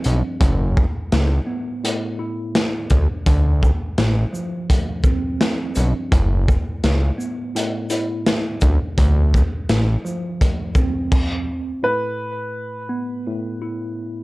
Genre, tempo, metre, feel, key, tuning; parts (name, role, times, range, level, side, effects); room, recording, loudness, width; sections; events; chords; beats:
hip hop, boom-bap hip-hop; 84 BPM; 4/4; swing 61% on 16ths; A4 = 440 Hz
mellow tine electric piano; accompaniment; 0.0-14.2 s; D2 to E4; -27 LUFS; equal; medium stereo tremolo, high-pass filter, low-pass filter
crunchy breakbeat drum kit; drums; 0.0-11.3 s; crash cymbal, hi-hat, kick drum, shaker, snare drum; -19 LUFS; equal
fat analog bass; bass; 0.1-10.0 s; F#1 to D2; -17 LUFS; equal
dark upright piano; melody; 11.8-14.2 s; B4; -24 LUFS; equal; high-pass filter, low-pass filter, tape echo
little or no reverb; dark, warm production; -18 LUFS; side -21 dB against mid
0.0-11.8 A section; 11.8-14.2 B section
stop 11.1-11.8
0.4 F#m7; 2.9 Dm7; 6.1 F#m7; 8.6 Dm7; 11.8 Asus2
| 0.41 1.12 1.83 2.55 | 3.26 3.98 4.69 5.41 | 6.12 6.83 7.55 8.26 | 8.98 9.69 10.40 11.12 | 11.83 12.55 13.26 13.98